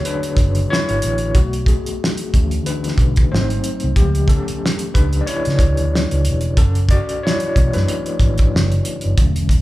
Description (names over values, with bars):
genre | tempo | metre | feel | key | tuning
R&B, neo-soul | 92 BPM | 4/4 | swing 56% on 16ths | unclear | A4 = 444 Hz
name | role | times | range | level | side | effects
overdriven tine electric piano | accompaniment | 0.0-9.6 s | D3 to D5 | -22 LUFS | left 2 dB | fast tremolo
cloth-damped thuddy drum kit | drums | 0.1-9.6 s | hi-hat, kick drum, snare drum | -17 LUFS | equal | none
vintage muted fingered electric bass | bass | 0.4-9.6 s | E1 to C#3 | -20 LUFS | equal | none
room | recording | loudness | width
moderate large studio reverb, RT60 1.3 s | band playing live in one room | -15 LUFS | side -17 dB against mid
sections
0.0-9.6 A section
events
tine electric piano solo 0.0-9.6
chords
0.0 E13sus4; 1.4 Bm11; 3.3 G#7b9; 4.0 C#7alt; 6.6 F#m11